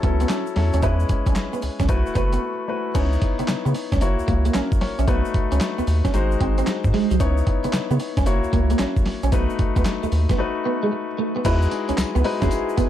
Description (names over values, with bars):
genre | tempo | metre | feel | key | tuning
R&B, new jack swing | 113 BPM | 4/4 | swing 66% on 16ths | E major | A4 = 440 Hz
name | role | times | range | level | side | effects
clear concert grand piano | accompaniment | 0.0-12.9 s | F#3 to E5 | -25 LUFS | left 4 dB | none
electric guitar at the edge of break-up | riff | 0.0-12.9 s | F#3 to E4 | -26 LUFS | right 4 dB | ensemble chorus
round analog bass | bass | 0.0-12.5 s | F#1 to C#3 | -21 LUFS | equal | none
dusty soul sampler-style drum kit | drums | 0.0-12.9 s | crash cymbal, handclaps, hi-hat, kick drum, snare drum, tambourine | -23 LUFS | equal | overdrive
tube shaker | percussion | 0.2-12.9 s | none | -46 LUFS | left 8 dB | none
room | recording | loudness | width
digital ambience | dark, warm production | -19 LUFS | side -11 dB against mid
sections
0.0-3.0 A section; 3.0-11.4 B section; 11.4-12.9 C section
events
break 2.4-3.0, 10.4-11.4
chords
0.0 F#m7; 0.8 E6; 1.9 B7sus4; 3.0 C#m9; 4.0 F#7; 5.1 B7; 6.1 G#7; 7.2 C#m9; 8.3 F#7; 9.3 B7; 11.4 Emaj9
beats
0.30 | 0.83 1.36 1.89 2.42 | 2.95 3.48 4.01 4.54 | 5.08 5.61 6.14 6.67 | 7.20 7.73 8.26 8.79 | 9.32 9.85 10.38 10.92 | 11.45 11.98 12.51